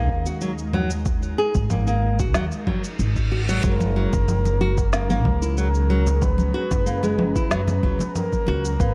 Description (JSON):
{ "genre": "organic downtempo", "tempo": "93 BPM", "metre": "4/4", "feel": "straight", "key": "unclear", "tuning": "A4 = 444 Hz", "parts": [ { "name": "ethereal airy pad", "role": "sustained chords", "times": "0.0-8.9 s", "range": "F#3 to A#5", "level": "-35 LUFS", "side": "equal", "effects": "ensemble chorus, built-in reverb, sidechain pumping" }, { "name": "nylon-string guitar", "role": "arpeggios", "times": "0.0-8.9 s", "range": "F#3 to G#4", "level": "-29 LUFS", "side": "equal", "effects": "digital delay" }, { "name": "upright bass", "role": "bass", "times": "0.0-8.9 s", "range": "F#1 to F#2", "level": "-25 LUFS", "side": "equal", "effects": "sidechain pumping" }, { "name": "bronze singing bowl", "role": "texture", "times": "0.0-8.9 s", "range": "G#3 to C#5", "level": "-42 LUFS", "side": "equal", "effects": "none" }, { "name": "electronic kick drum", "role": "drums", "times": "0.1-8.9 s", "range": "none", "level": "-27 LUFS", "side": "equal", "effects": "overdrive, studio reverb" }, { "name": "electronic cabasa, congas and snare drum", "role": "drums", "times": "0.3-8.9 s", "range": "none", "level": "-30 LUFS", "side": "equal", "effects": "studio reverb" }, { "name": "reverse cymbal", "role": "sound effects", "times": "2.6-3.6 s", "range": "none", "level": "-36 LUFS", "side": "equal", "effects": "none" }, { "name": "breathy flute-like synth lead", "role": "melody", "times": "3.6-8.9 s", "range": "A#4 to B4", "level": "-31 LUFS", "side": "equal", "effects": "chorus, digital delay" }, { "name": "congas", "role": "percussion", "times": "3.8-8.6 s", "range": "none", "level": "-31 LUFS", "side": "equal", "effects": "none" } ], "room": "light reverb, small room ambience", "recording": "dark, warm production", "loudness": "-22 LUFS", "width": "mono", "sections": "0.0-8.9 A section", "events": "reverse cymbal 2.6-3.6", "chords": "0.0 G#sus2; 3.6 F#69", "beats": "0.41 | 1.06 1.70 2.35 2.99 | 3.64 4.28 4.93 5.57 | 6.22 6.87 7.51 8.15 | 8.80" }